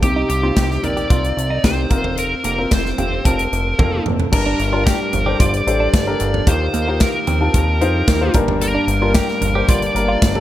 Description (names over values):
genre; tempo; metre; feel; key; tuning
piano-driven pop; 112 BPM; 4/4; straight; unclear; A4 = 440 Hz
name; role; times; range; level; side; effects
high-gain lead guitar; melody; 0.0-10.4 s; G4 to D5; -22 LUFS; equal; distortion
warm baby grand piano; accompaniment; 0.0-10.4 s; G2 to A5; -21 LUFS; left 3 dB; none
chorused synth bass; bass; 0.0-10.4 s; F1 to F2; -21 LUFS; equal; none
modern studio drum kit; drums; 0.0-10.4 s; crash cymbal, hi-hat, kick drum, snare drum, toms; -18 LUFS; equal; none
direct-recorded clean electric guitar; riff; 0.2-10.2 s; Bb3 to G4; -26 LUFS; right 5 dB; phaser
room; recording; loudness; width
light reverb, studio reverb; none; -15 LUFS; side -13 dB against mid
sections
0.0-4.3 A section; 4.3-10.4 B section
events
drum fill 3.8-4.3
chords
0.0 Cm; 1.9 Fsus4; 4.3 Gmadd9; 6.5 Ebadd9; 8.3 Gm